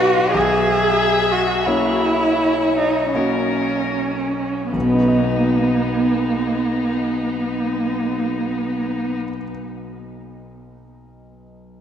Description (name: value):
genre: classical, slow romantic movement for piano quartet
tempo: 35-47 BPM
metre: 3/4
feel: rubato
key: B major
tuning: A4 = 440 Hz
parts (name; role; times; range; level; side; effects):
- warm violin; melody; 0.0-9.2 s; D#4 to E5; -25 LUFS; left 4 dB; none
- warm cello; second line; 0.0-9.2 s; B3 to G#4; -19 LUFS; right 2 dB; none
- clear concert grand piano; accompaniment; 0.0-11.8 s; B1 to D#5; -23 LUFS; left 1 dB; none
room: wet church reverb, RT60 3.7 s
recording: none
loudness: -17 LUFS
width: side -9 dB against mid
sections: 0.0-4.7 A section; 4.7-9.0 B section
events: slowing down 0.0-4.7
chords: 0.3 F#7/B; 4.7 B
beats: | 0.35 1.67 3.15 | 4.74 6.17 7.58